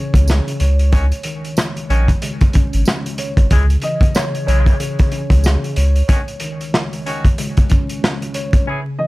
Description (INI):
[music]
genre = hip hop, boom-bap hip-hop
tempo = 93 BPM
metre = 4/4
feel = swing 61% on 16ths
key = C# minor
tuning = A4 = 440 Hz
[part]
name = clear upright piano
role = melody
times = 0.0-9.1 s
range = C#5 to D#5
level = -25 LUFS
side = left 2 dB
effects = high-pass filter, low-pass filter
[part]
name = mellow tine electric piano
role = accompaniment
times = 0.0-9.1 s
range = C#2 to C#5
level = -24 LUFS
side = equal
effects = medium stereo tremolo, cassette tape, high-pass filter, low-pass filter
[part]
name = warm sub bass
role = bass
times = 0.1-6.0 s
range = G#1 to C#2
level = -14 LUFS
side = equal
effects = none
[part]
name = crunchy breakbeat drum kit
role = drums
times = 0.1-8.7 s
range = hi-hat, kick drum, rim click, snare drum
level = -16 LUFS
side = equal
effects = none
[part]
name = tambourine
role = percussion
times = 0.3-5.6 s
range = none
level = -31 LUFS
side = right 4 dB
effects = none
[part]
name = clear horn section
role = stabs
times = 0.9-8.8 s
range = C#3 to G#4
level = -26 LUFS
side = left 1 dB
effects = high-pass filter, low-pass filter, tape echo
[sound]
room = little or no reverb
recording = vinyl crackle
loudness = -14 LUFS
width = side -20 dB against mid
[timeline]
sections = 0.0-9.1 A section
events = none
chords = 0.0 C#m; 0.6 D#5; 3.5 C#m; 5.8 C#sus2